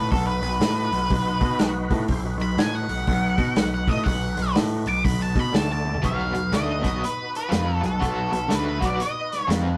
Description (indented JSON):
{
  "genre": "blues rock power trio and southern rock",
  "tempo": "122 BPM",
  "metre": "4/4",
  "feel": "swing 63% on 8ths",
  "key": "B mixolydian",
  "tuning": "A4 = 440 Hz",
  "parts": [
    { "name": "octave-fuzz lead guitar", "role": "melody", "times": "0.0-9.5 s", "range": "A4 to D6", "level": "-29 LUFS", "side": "equal", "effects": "distortion" },
    { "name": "overdriven tonewheel organ", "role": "sustained chords", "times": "0.0-9.8 s", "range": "A3 to D5", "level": "-36 LUFS", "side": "equal", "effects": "slow rotary speaker, chorus vibrato" },
    { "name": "growling picked electric bass", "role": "bass", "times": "0.0-9.8 s", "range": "B1 to B2", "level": "-28 LUFS", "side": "equal", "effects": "overdrive" },
    { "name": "vintage drum kit", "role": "drums", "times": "0.1-9.6 s", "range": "hi-hat, kick drum, snare drum, toms", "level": "-28 LUFS", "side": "equal", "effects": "none" },
    { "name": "raw garage guitar", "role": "riff", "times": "6.0-9.8 s", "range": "B2 to E#4", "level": "-30 LUFS", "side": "equal", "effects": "overdrive, tremolo" }
  ],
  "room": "moderate studio reverb, RT60 0.7 s",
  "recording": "rough rehearsal-room recording, tube saturation",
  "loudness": "-23 LUFS",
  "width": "mono",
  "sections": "0.0-6.0 A section; 6.0-9.8 B section",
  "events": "lead electric guitar solo 0.0-6.0; drum fill 5.8",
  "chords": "0.0 B; 5.5 D5; 6.0 B"
}